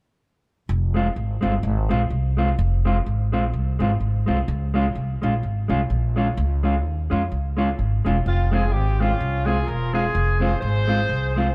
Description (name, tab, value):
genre	ska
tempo	127 BPM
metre	4/4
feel	swing 57% on 8ths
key	F minor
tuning	A4 = 440 Hz
part	upright bass	bass	0.7-11.5 s	E1 to F2	-24 LUFS	equal	none
part	mellow electric guitar	accompaniment	0.9-11.5 s	Ab3 to F4	-27 LUFS	equal	none
part	warm horn section	melody	8.3-11.5 s	C4 to C5	-28 LUFS	equal	analog delay
room	light reverb, small room ambience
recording	dark, warm production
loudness	-22 LUFS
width	mono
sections	0.7-8.3 A section; 8.3-11.5 B section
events	none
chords	0.7 Fm; 4.5 Db; 8.3 Fm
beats	| 0.69 1.17 1.64 2.11 | 2.58 3.06 3.53 4.00 | 4.47 4.95 5.42 5.89 | 6.36 6.84 7.31 7.78 | 8.25 8.73 9.20 9.67 | 10.14 10.62 11.09